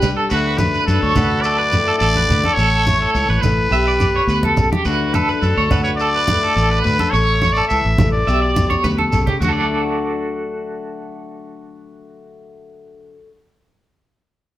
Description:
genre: highlife guitar band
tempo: 106 BPM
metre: 4/4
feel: straight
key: D major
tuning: A4 = 440 Hz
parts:
  - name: electric guitar through a small old amp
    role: accompaniment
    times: 0.0-13.4 s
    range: A2 to A4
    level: -24 LUFS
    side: left 3 dB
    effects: none
  - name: electric guitar at the edge of break-up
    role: arpeggios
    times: 0.0-13.2 s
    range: F#4 to E5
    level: -21 LUFS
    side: right 2 dB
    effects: tremolo
  - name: congas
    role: percussion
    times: 0.0-9.7 s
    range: none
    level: -22 LUFS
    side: right 1 dB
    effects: none
  - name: shekere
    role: percussion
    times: 0.0-9.7 s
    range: none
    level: -25 LUFS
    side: equal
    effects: none
  - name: trumpet with straight mute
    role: melody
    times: 0.3-8.8 s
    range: F#4 to E5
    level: -19 LUFS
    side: left 1 dB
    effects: none
  - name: fingered electric bass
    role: bass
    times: 0.3-13.1 s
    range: A1 to F#2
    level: -20 LUFS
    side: equal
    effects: none
room: wet stone room reverb, RT60 1.0 s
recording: band playing live in one room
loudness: -14 LUFS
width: side -14 dB against mid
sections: 0.3-9.4 A section; 9.4-11.7 B section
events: drum fill 8.7-9.4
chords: 0.3 D; 2.6 A; 3.7 G/B; 4.9 D; 7.1 A; 8.3 G/B; 9.4 D

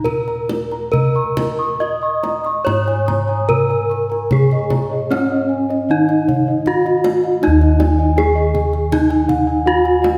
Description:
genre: Javanese gamelan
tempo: 68-80 BPM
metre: 4/4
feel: straight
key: Eb slendro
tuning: A4 = 440 Hz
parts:
  - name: gamelan-type bronze metallophone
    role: melody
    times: 0.0-10.2 s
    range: Db4-25c to Eb5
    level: -19 LUFS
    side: equal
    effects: none
  - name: gamelan-type bossed gongs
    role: arpeggios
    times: 0.0-10.2 s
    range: Db5-25c to Db6-25c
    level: -27 LUFS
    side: equal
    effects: none
  - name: gamelan-type bossed gongs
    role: bass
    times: 0.0-10.2 s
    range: Eb2 to Bb4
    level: -24 LUFS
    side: equal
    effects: none
  - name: kendang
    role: percussion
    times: 0.1-10.2 s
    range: none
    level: -24 LUFS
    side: equal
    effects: none
  - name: gamelan-type bronze metallophone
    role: arpeggios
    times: 0.9-10.2 s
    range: Db5-25c to Eb6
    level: -29 LUFS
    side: equal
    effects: none
room: wet scoring stage reverb, RT60 1.7 s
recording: recorded in a church or concert hall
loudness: -17 LUFS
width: mono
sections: 0.0-7.4 A section; 7.4-10.2 B section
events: none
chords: none

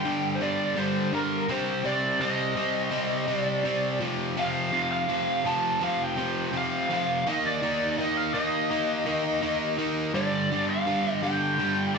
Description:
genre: rock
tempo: 83 BPM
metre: 4/4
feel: straight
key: G minor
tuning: A4 = 440 Hz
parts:
  - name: lead guitar through a small cranked amp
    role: melody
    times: 0.0-12.0 s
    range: Bb4 to A5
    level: -28 LUFS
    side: equal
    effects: wah, overdrive
  - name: distorted electric guitar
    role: riff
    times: 0.0-12.0 s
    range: F2 to Eb4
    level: -27 LUFS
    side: equal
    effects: distortion
room: moderate large studio reverb, RT60 1.4 s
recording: none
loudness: -24 LUFS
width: side -5 dB against mid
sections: 0.0-12.0 A section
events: none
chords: 0.0 G5; 1.5 Cm; 4.0 F5; 7.3 Eb5; 10.1 G5

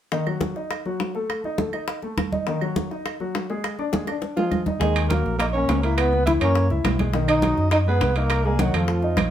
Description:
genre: Afro-Cuban jazz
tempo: 205 BPM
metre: 4/4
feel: straight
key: Eb minor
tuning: A4 = 440 Hz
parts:
  - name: warm grand piano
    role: accompaniment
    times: 0.1-9.3 s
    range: Eb3 to Fb5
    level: -27 LUFS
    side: left 2 dB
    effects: none
  - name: bongos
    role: percussion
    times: 0.1-9.3 s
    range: none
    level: -30 LUFS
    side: left 3 dB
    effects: none
  - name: congas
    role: percussion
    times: 0.1-9.3 s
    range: none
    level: -29 LUFS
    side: right 2 dB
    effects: none
  - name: claves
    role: percussion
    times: 0.3-9.3 s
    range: none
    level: -34 LUFS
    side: right 10 dB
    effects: none
  - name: warm trombone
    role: melody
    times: 4.4-9.3 s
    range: F3 to Fb4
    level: -24 LUFS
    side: equal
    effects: plate reverb
  - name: growling tenor saxophone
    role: second line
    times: 4.4-9.3 s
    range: F4 to Fb5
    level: -27 LUFS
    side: right 4 dB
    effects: none
  - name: fingered electric bass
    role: bass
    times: 4.8-9.3 s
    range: Bb1 to Gb2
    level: -22 LUFS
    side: equal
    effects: none
  - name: timbales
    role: percussion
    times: 5.0-9.3 s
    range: none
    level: -30 LUFS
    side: right 6 dB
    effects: none
room: wet studio reverb, RT60 0.6 s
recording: heard from further back in the room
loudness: -20 LUFS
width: side -10 dB against mid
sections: 0.1-4.8 A section; 4.8-9.3 B section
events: drum fill 3.9-4.8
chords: 0.1 Ebm; 1.3 N.C.; 2.5 Ab5; 3.6 Fm6; 4.8 Ebm7; 6.0 Dbm7; 6.6 Gb9; 7.1 B6; 8.3 Ab13/C

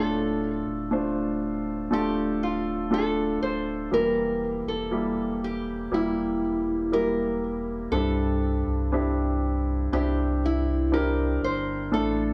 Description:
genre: pop ballad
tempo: 60 BPM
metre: 4/4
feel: straight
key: unclear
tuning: A4 = 440 Hz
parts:
  - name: nylon-string guitar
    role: melody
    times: 0.0-12.3 s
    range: E4 to C5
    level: -31 LUFS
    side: equal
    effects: tape echo
  - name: warm grand piano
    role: accompaniment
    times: 0.0-12.3 s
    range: G2 to C5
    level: -29 LUFS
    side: equal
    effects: none
  - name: warm sub bass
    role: bass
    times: 0.0-12.3 s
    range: D1 to C2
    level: -33 LUFS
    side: equal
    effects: none
room: light reverb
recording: small room ambience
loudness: -26 LUFS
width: mono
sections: 0.0-12.3 A section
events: none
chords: 0.0 Dm; 3.9 Edim; 7.9 Cadd9

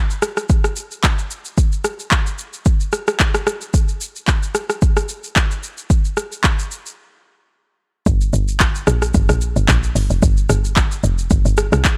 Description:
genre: amapiano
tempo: 111 BPM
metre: 4/4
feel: swing 55% on 16ths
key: G minor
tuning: A4 = 441 Hz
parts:
  - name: deep house drum kit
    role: drums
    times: 0.1-12.0 s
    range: handclaps, hi-hat, kick drum, rim click, shaker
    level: -19 LUFS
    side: equal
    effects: overdrive
  - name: woody log drum bass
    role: bass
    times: 8.1-11.8 s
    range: F1 to C2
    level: -20 LUFS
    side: equal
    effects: none
room: little or no reverb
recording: none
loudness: -18 LUFS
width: mono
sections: 0.0-8.1 A section; 8.1-12.0 B section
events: break 7.0-8.1; drop 8.1-12.0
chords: none

